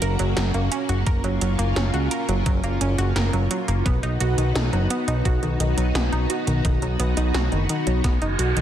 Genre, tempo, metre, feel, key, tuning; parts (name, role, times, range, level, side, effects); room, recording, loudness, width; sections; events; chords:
synthwave; 86 BPM; 4/4; straight; A4 = 440 Hz
string machine, full ensemble; sustained chords; 0.0-8.6 s; A#3 to F#4; -28 LUFS; equal; ensemble chorus, sidechain pumping
analog pluck; arpeggios; 0.0-8.6 s; D#3 to A#4; -27 LUFS; right 2 dB; chorus, tape echo
fat analog bass; bass; 0.0-8.6 s; F#1 to C#2; -22 LUFS; equal; sidechain pumping
80s electronic pad drums; drums; 0.0-8.6 s; hi-hat, snare drum; -29 LUFS; equal
electronic kick drum; drums; 1.1-8.2 s; -23 LUFS; equal
reverse cymbal; sound effects; 8.2-8.6 s; -28 LUFS; right 4 dB
light reverb, digital ambience; dense, heavily limited modern master; -20 LUFS; side -10 dB against mid
0.0-8.6 A section
reverse cymbal 8.2-8.6
0.0 F#; 3.9 B